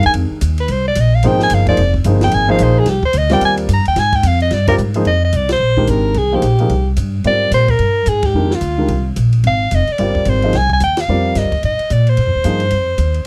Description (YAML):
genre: modal jazz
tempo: 220 BPM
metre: 4/4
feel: swing 60% on 8ths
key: F dorian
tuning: A4 = 439 Hz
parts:
  - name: warm soprano saxophone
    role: melody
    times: 0.0-13.3 s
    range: F4 to Bb5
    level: -19 LUFS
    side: equal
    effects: none
  - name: warm upright piano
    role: accompaniment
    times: 0.0-12.6 s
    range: Eb3 to Eb5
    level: -20 LUFS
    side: equal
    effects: none
  - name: upright bass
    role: bass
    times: 0.0-13.3 s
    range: F1 to Bb2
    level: -17 LUFS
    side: equal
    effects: none
  - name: compact cocktail drum kit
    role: drums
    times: 0.0-13.3 s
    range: hi-hat, kick drum, ride cymbal, snare drum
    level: -28 LUFS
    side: equal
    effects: none
room: studio reverb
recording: dry, close 1970s-style studio recording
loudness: -15 LUFS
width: mono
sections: 0.0-5.1 A section; 5.1-13.3 B section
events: soprano saxophone solo 0.0-5.1; band accent 5.5, 8.2, 10.9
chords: 0.0 Fm11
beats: 0.15 0.42 | 0.70 0.97 1.24 1.51 | 1.79 2.06 2.33 2.60 | 2.88 3.15 3.42 3.69 | 3.97 4.24 4.51 4.79 | 5.06 5.33 5.61 5.88 | 6.16 6.43 6.71 6.98 | 7.25 7.53 7.80 8.08 | 8.35 8.62 8.90 9.17 | 9.45 9.72 9.99 10.27 | 10.54 10.81 11.08 11.36 | 11.63 11.90 12.18 12.45 | 12.72 12.99 13.27